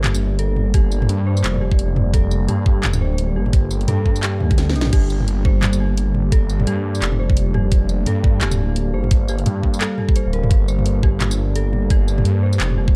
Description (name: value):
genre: half-time drum and bass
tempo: 172 BPM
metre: 4/4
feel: swing 59% on 16ths, half-time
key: G minor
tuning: A4 = 438 Hz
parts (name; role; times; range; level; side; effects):
- deep dark ambient pad; sustained chords; 0.0-13.0 s; G3 to G5; -29 LUFS; equal; chorus, built-in reverb, sidechain pumping
- dark detuned synth bell; arpeggios; 0.0-13.0 s; D4 to G5; -31 LUFS; equal; chorus, tremolo, digital delay
- phased detuned saw bass; bass; 0.0-13.0 s; D1 to G2; -22 LUFS; equal; phaser
- drum and bass drum kit; drums; 0.0-12.8 s; crash cymbal, handclaps, hi-hat, snare drum, tambourine, toms; -26 LUFS; equal; small room ambience
- electronic kick drum; drums; 0.7-12.9 s; none; -18 LUFS; equal; small room ambience
room: light reverb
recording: dark, warm production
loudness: -18 LUFS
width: mono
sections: 0.0-13.0 A section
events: drum fill 4.6-4.9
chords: 0.0 Gm